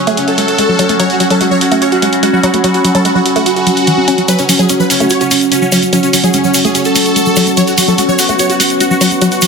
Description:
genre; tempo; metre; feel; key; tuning
psychedelic trance; 146 BPM; 4/4; straight; F# minor; A4 = 440 Hz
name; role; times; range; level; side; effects
overtone-sweeping drone; sustained chords; 0.0-9.5 s; F#3 to C#4; -17 LUFS; equal; chorus, built-in reverb, phaser
warbly tape-like pad; texture; 0.0-9.5 s; C#4 to C#6; -16 LUFS; right 1 dB; chorus, built-in reverb
dense compressed supersaw; melody; 0.1-9.5 s; C#4 to C#5; -15 LUFS; equal; phaser, ping-pong delay
woody wave-folded pluck; riff; 0.1-9.5 s; E3 to F#4; -15 LUFS; moving between left 5 dB and right 6 dB; chorus, auto-pan, dub echo
electronic hi-hat; drums; 0.1-9.5 s; none; -16 LUFS; right 1 dB; high-pass filter on hats, high-pass filter on cymbals, high-pass filter on perc, high-pass filter on snare, high-pass filter on room
tube shaker; percussion; 4.3-9.5 s; none; -20 LUFS; equal; none
room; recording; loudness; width
wet lush hall reverb, RT60 1.8 s; dense, heavily limited modern master; -9 LUFS; side -5 dB against mid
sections
0.0-4.3 A section; 4.3-9.5 B section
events
build-up 4.3-9.5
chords
0.0 F#5

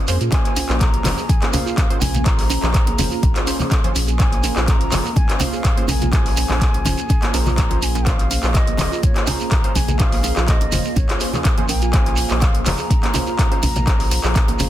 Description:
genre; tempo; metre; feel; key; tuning
afro house; 124 BPM; 4/4; straight; Bb minor; A4 = 440 Hz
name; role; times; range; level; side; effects
ethereal airy pad; sustained chords; 0.0-14.7 s; Bb3 to F5; -31 LUFS; left 2 dB; ensemble chorus, built-in reverb, tremolo, sidechain pumping
warm analog keys; stabs; 0.0-14.7 s; Db4 to C5; -30 LUFS; right 3 dB; chorus, sidechain pumping, digital delay
warm sub bass; bass; 0.1-14.7 s; F1 to Bb2; -22 LUFS; equal; tube saturation, sidechain pumping
deep house drum kit; drums; 0.1-14.7 s; handclaps, hi-hat; -24 LUFS; left 1 dB; none
shekere; percussion; 0.1-14.7 s; none; -29 LUFS; right 6 dB; none
handpan; arpeggios; 0.2-14.7 s; Bb3 to Bb4; -28 LUFS; right 7 dB; sidechain pumping, digital delay
breathy mellow bansuri; melody; 0.3-14.7 s; Db5 to Bb5; -28 LUFS; left 3 dB; digital delay
electronic kick drum; drums; 0.3-14.5 s; none; -18 LUFS; equal; none
djembe; percussion; 0.3-14.7 s; none; -28 LUFS; right 2 dB; none
congas; percussion; 1.0-14.7 s; none; -26 LUFS; left 2 dB; none
room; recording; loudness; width
little or no reverb; dense, heavily limited modern master; -15 LUFS; side -12 dB against mid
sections
0.0-14.7 A section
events
none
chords
0.0 Bbm7

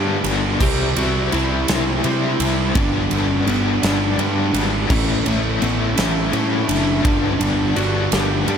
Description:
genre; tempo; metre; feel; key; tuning
quiet-loud alternative rock; 56 BPM (dotted quarters); 6/8; straight; unclear; A4 = 440 Hz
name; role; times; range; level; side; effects
lightly driven lead guitar; melody; 0.0-8.6 s; A3 to G4; -24 LUFS; left 2 dB; slapback echo
biting overdriven guitar; riff; 0.0-8.6 s; G2 to E4; -25 LUFS; left 9 dB; tremolo, slapback echo
distorted electric guitar; riff; 0.0-8.6 s; G2 to E4; -27 LUFS; right 13 dB; distortion, slapback echo
high-gain distorted guitar; riff; 0.0-8.6 s; G2 to C4; -26 LUFS; equal; distortion, slapback echo
fuzz picked electric bass; bass; 0.0-8.6 s; F#1 to C3; -22 LUFS; right 1 dB; overdrive
huge arena drum kit; drums; 0.2-8.6 s; crash cymbal, kick drum, ride cymbal, snare drum; -22 LUFS; right 1 dB; none
room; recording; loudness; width
light reverb, small room ambience; none; -16 LUFS; side -8 dB against mid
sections
0.0-8.6 A section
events
none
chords
0.0 G; 0.6 C; 2.8 G; 4.9 A; 7.0 G

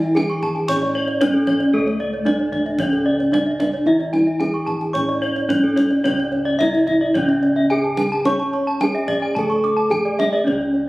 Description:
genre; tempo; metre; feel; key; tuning
Balinese gamelan; 110 BPM; 4/4; uneven beats; C# pelog; A4 = 439 Hz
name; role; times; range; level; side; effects
gamelan-type bronze metallophone; melody; 0.0-10.9 s; A3-20c to C#5; -19 LUFS; equal; none
gamelan-type bronze metallophone; accompaniment; 0.0-10.9 s; C#3 to C#4; -28 LUFS; equal; none
gamelan-type bronze metallophone; arpeggios; 0.0-10.6 s; A4-20c to C#6; -24 LUFS; left 1 dB; none
gamelan-type bronze metallophone; arpeggios; 0.0-10.9 s; A4-20c to D6+20c; -30 LUFS; right 2 dB; none
gamelan-type bossed gongs; bass; 0.0-10.9 s; C#2 to C#5; -25 LUFS; equal; none
kendang; percussion; 0.2-10.8 s; none; -27 LUFS; right 1 dB; none
room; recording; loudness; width
moderate scoring stage reverb, RT60 1.4 s; recorded on a phone in the room, studio ambience, compression; -16 LUFS; side -19 dB against mid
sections
0.0-6.0 A section; 6.0-10.9 B section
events
none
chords
none

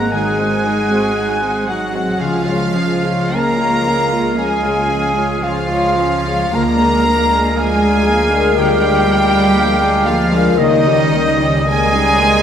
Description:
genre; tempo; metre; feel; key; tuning
classical, slow romantic movement for symphony orchestra; 51-61 BPM; 4/4; rubato; unclear; A4 = 441 Hz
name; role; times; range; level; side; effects
warm chamber violin section; melody; 0.0-12.4 s; Eb5 to Bb5; -22 LUFS; left 1 dB; none
clear oboe; second line; 0.0-12.4 s; Eb5 to Gb5; -23 LUFS; right 2 dB; none
concert flute; second line; 0.0-12.4 s; Eb5 to Bb5; -22 LUFS; left 2 dB; none
warm chamber violin section; second line; 0.0-12.4 s; Db4 to Db5; -27 LUFS; left 4 dB; none
dark bassoon; accompaniment; 0.0-12.4 s; G3 to Ab3; -26 LUFS; right 2 dB; none
dark chamber viola section; accompaniment; 0.0-12.4 s; Eb3 to F4; -22 LUFS; right 2 dB; none
dark French horn section; sustained chords; 0.0-12.4 s; Eb3 to Bb3; -22 LUFS; left 2 dB; none
concert harp; arpeggios; 0.0-12.4 s; Ab2 to Bb5; -23 LUFS; left 6 dB; none
dark trumpet section; stabs; 0.0-12.4 s; Eb4 to Bb4; -21 LUFS; right 1 dB; none
warm chamber double bass section; bass; 0.0-12.4 s; Ab1 to D2; -24 LUFS; right 3 dB; none
warm studio cello section; bass; 0.0-12.4 s; Eb3 to Bb3; -22 LUFS; right 2 dB; none
room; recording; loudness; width
wet concert hall reverb, RT60 2.2 s; none; -12 LUFS; side -8 dB against mid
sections
0.0-12.4 A section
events
none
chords
0.0 Ab7; 2.2 Db; 6.5 Bb7/D; 10.6 Eb7/Db

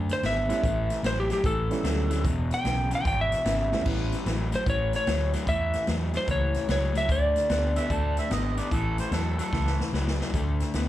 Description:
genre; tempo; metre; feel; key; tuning
electric blues shuffle; 148 BPM; 4/4; swing 65% on 8ths; A mixolydian; A4 = 440 Hz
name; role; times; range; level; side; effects
crunchy overdriven guitar; riff; 0.0-10.9 s; E2 to B3; -31 LUFS; left 4 dB; slapback echo
vintage muted fingered electric bass; bass; 0.0-10.9 s; E1 to F#2; -28 LUFS; equal; none
electric slide guitar; melody; 0.1-8.3 s; G4 to G5; -28 LUFS; equal; slapback echo
swinging big-band drum kit; drums; 0.1-10.9 s; crash cymbal, hi-hat, kick drum, snare drum, toms; -32 LUFS; equal; none
dark concert grand piano; accompaniment; 0.5-4.2 s; G3 to E4; -33 LUFS; right 6 dB; slapback echo
mellow harmonica; second line; 7.8-9.8 s; A4 to A5; -33 LUFS; right 7 dB; overdrive, slapback echo
room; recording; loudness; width
little or no reverb; live gig heard through the venue's PA, club reverb; -24 LUFS; side -13 dB against mid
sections
0.0-3.9 A section; 3.9-10.9 B section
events
electric slide guitar solo 0.0-3.9; drum fill 3.7, 9.5-10.3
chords
0.0 Dadd9; 0.6 A9; 2.2 E; 3.9 A; 7.1 D5; 8.7 A; 10.3 D5

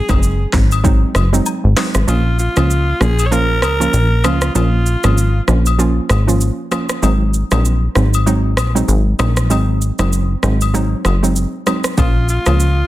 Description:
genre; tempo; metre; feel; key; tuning
afrobeats; 97 BPM; 4/4; swing 58% on 16ths; Bb minor; A4 = 440 Hz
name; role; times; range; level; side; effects
raspy alto saxophone; melody; 0.0-5.4, 12.0-12.9 s; F4 to Db5; -20 LUFS; equal; none
hollow square pluck; accompaniment; 0.1-12.9 s; F3 to F4; -20 LUFS; right 3 dB; chorus
plucky analog bass; bass; 0.1-12.8 s; Gb1 to Db2; -14 LUFS; equal; none
afro-pop drum kit; drums; 0.1-12.8 s; handclaps, hi-hat, kick drum, rim click, shaker; -19 LUFS; equal; soft clipping on snare
agogo bells and woodblock; percussion; 0.1-12.6 s; none; -27 LUFS; left 8 dB; none
room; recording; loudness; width
digital ambience; dense, heavily limited modern master; -12 LUFS; side -15 dB against mid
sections
0.0-2.1 A section; 2.1-12.9 B section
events
kick muted 2.1-12.0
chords
0.0 Ab7; 2.1 Bbm; 7.0 Ab7; 12.0 Bbm

